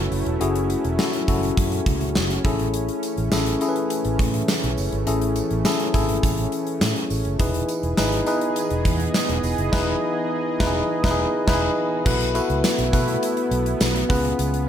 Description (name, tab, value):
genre	1980s-style pop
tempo	103 BPM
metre	4/4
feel	straight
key	unclear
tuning	A4 = 440 Hz
part	tine electric piano	accompaniment	0.0-14.7 s	B3 to B4	-23 LUFS	left 3 dB	none
part	lush unison pad	sustained chords	0.0-14.7 s	C#3 to D#5	-29 LUFS	right 4 dB	chorus
part	vintage muted fingered electric bass	bass	0.0-14.7 s	E1 to B2	-25 LUFS	right 1 dB	none
part	gated 80s drum kit	drums	0.1-14.7 s	crash cymbal, hi-hat, kick drum, snare drum, tambourine	-24 LUFS	equal	gated reverb
part	tambourine	percussion	3.0-14.5 s	none	-38 LUFS	right 13 dB	none
room	light reverb, studio ambience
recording	none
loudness	-19 LUFS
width	side -9 dB against mid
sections	0.0-12.1 A section; 12.1-14.7 B section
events	band accent 9.7-12.1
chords	0.0 Amaj7; 7.4 Emaj7; 12.1 B7sus4; 14.1 C#7